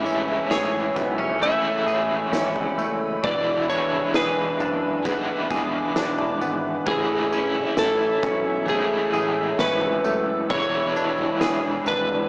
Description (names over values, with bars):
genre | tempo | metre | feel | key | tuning
dream pop | 66 BPM | 4/4 | straight | A major | A4 = 440 Hz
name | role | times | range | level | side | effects
electric slide guitar | melody | 0.0-12.3 s | G#4 to E5 | -24 LUFS | equal | tape echo
overdriven semi-hollow guitar | accompaniment | 0.0-12.3 s | E2 to E4 | -26 LUFS | equal | tremolo, lush chorus
warbly tape-like pad | sustained chords | 0.0-12.3 s | D4 to E6 | -30 LUFS | equal | chorus, built-in reverb
semi-hollow electric guitar | arpeggios | 0.0-12.3 s | E3 to G#4 | -28 LUFS | equal | ensemble chorus, tape echo
fat analog bass | bass | 0.0-12.3 s | E1 to B1 | -33 LUFS | equal | none
oversized low-tuned drum kit | drums | 0.1-12.3 s | kick drum, snare drum, tambourine, toms | -30 LUFS | equal | none
room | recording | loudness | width
small room ambience | dry, gritty hardware recording, transformer saturation, small speaker sound | -20 LUFS | side -30 dB against mid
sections
0.0-12.3 A section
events
none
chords
0.0 Amaj7; 3.2 E7; 6.9 Amaj7; 10.5 E7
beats
0.51 1.42 2.32 | 3.23 4.14 5.05 5.96 | 6.87 7.78 8.69 9.60 | 10.51 11.41